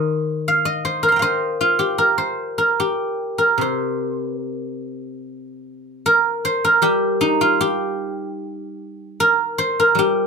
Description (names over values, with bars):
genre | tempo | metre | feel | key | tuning
chinese traditional, Chinese solo plucked strings | 76 BPM | 2/4 | rubato | C yu mode | A4 = 439 Hz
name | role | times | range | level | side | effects
guzheng | solo | 0.0-10.3 s | C3 to C6 | -17 LUFS | equal | none
room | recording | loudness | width
moderate studio reverb, RT60 0.6 s | minimal, uncompressed stereo recording | -17 LUFS | side -5 dB against mid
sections
0.0-5.3 A section; 5.3-10.3 B section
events
none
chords
none